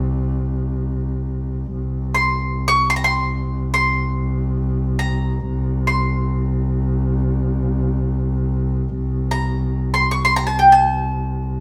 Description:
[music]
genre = Turkish makam ensemble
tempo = free time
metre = none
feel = none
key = unclear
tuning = A4 = 440 Hz
[part]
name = mandolin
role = melody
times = 0.0-11.6 s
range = C5 to Db6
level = -19 LUFS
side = equal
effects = none
[part]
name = rich double bass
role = drone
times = 0.0-11.6 s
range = C2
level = -22 LUFS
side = equal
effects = none
[sound]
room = wet stone room reverb, RT60 1.1 s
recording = band playing live in one room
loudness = -20 LUFS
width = mono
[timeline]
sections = 0.0-1.7 A section; 1.7-11.6 A section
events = none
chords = none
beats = free time

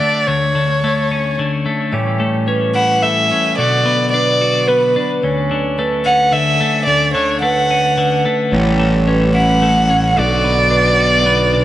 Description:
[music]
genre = rock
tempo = 109 BPM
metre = 3/4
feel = straight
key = D major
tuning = A4 = 440 Hz
[part]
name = dark violin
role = melody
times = 0.0-11.6 s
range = B4 to F#5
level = -15 LUFS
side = right 1 dB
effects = tape echo
[part]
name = pedal steel guitar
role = sustained chords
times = 0.0-11.6 s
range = D3 to G4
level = -26 LUFS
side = right 1 dB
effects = none
[part]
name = twelve-string electric guitar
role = arpeggios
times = 0.0-11.6 s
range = D2 to F#4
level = -18 LUFS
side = left 2 dB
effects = tape echo
[part]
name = vibraphone with medium mallets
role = arpeggios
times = 1.9-11.6 s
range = A4 to C#5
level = -21 LUFS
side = right 3 dB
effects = tape echo
[part]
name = fuzz picked electric bass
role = bass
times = 8.5-11.6 s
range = A1 to B1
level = -16 LUFS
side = equal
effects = overdrive
[sound]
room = light reverb, studio reverb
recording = nothing above 11.0 kHz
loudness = -12 LUFS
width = side -13 dB against mid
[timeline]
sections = 0.0-1.9 A section; 1.9-11.6 A section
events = none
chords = 0.0 Dmaj7; 1.9 A7; 3.6 Bm7; 5.2 Dmaj7; 8.5 A7; 10.2 Bm7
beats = | 0.28 0.83 1.38 | 1.93 2.48 3.03 | 3.58 4.13 4.68 | 5.23 5.78 6.33 | 6.88 7.43 7.98 | 8.53 9.08 9.63 | 10.17 10.72 11.27

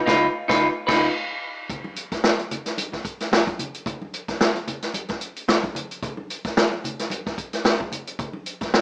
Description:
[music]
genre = funk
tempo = 111 BPM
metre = 4/4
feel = swing 56% on 16ths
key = unclear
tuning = A4 = 441 Hz
[part]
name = semi-hollow electric guitar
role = accompaniment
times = 0.1-1.1 s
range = D#4 to B4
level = -23 LUFS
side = equal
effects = spring reverb
[part]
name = vintage muted fingered electric bass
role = bass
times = 0.1-1.1 s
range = C#2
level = -38 LUFS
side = equal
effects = none
[part]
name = swinging big-band drum kit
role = drums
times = 0.1-8.8 s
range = crash cymbal, hi-hat, kick drum, snare drum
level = -25 LUFS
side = equal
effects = none
[part]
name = congas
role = percussion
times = 1.7-8.8 s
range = none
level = -38 LUFS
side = equal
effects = none
[sound]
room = moderate studio reverb, RT60 0.5 s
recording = small speaker sound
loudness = -25 LUFS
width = mono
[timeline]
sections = 0.0-1.7 A section; 1.7-8.8 B section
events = band accent 0.0-1.7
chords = 0.0 C#9; 1.7 N.C.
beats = 0.08 0.61 1.16 | 1.70 2.24 2.78 3.32 | 3.86 4.40 4.94 5.48 | 6.03 6.57 7.11 7.65 | 8.19 8.73

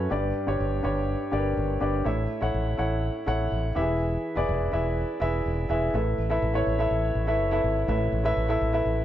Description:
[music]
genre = piano-driven pop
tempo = 124 BPM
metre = 4/4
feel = straight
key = A major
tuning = A4 = 440 Hz
[part]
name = warm upright piano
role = accompaniment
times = 0.0-9.0 s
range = G2 to F#5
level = -26 LUFS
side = equal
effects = none
[part]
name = fretless electric bass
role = bass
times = 0.0-9.0 s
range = E1 to A1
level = -28 LUFS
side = equal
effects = none
[sound]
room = light reverb, small room ambience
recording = dark, warm production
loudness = -24 LUFS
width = side -12 dB against mid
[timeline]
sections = 0.0-5.9 A section; 5.9-9.0 B section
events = none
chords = 0.1 G; 2.1 A; 3.8 E; 5.9 Asus2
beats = | 0.11 0.60 1.08 1.57 | 2.06 2.54 3.03 3.51 | 4.00 4.49 4.97 5.46 | 5.94 6.43 6.91 7.40 | 7.88 8.37 8.86

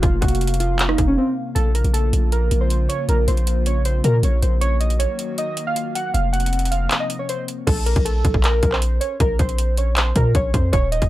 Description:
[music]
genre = hip hop, trap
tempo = 157 BPM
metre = 4/4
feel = half-time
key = Bb harmonic minor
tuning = A4 = 440 Hz
[part]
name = warbly lo-fi synth keys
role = melody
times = 0.0-11.1 s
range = C4 to Gb5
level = -24 LUFS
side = right 1 dB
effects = chorus
[part]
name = hollow soft pad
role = sustained chords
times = 0.0-7.7 s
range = C3 to F5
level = -29 LUFS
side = left 2 dB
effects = chorus
[part]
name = long sustained 808-style bass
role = bass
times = 0.0-11.1 s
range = Eb1 to Bb2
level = -19 LUFS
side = equal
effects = none
[part]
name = trap drum kit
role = drums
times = 0.0-11.1 s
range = crash cymbal, handclaps, hi-hat, kick drum, rim click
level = -22 LUFS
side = equal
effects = none
[sound]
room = little or no reverb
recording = dry, gritty hardware recording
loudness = -17 LUFS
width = side -15 dB against mid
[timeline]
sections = 0.0-1.6 A section; 1.6-7.7 B section; 7.7-11.1 C section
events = break 1.2-1.6, 6.9-7.7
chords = 0.0 Fsus4; 1.6 Bbm; 4.6 Ebm; 6.1 Fsus4; 7.7 Bb5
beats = | 0.03 0.41 0.79 1.18 | 1.56 1.94 2.32 2.71 | 3.09 3.47 3.85 4.23 | 4.62 5.00 5.38 5.76 | 6.14 6.53 6.91 7.29 | 7.67 8.05 8.44 8.82 | 9.20 9.58 9.97 10.35 | 10.73

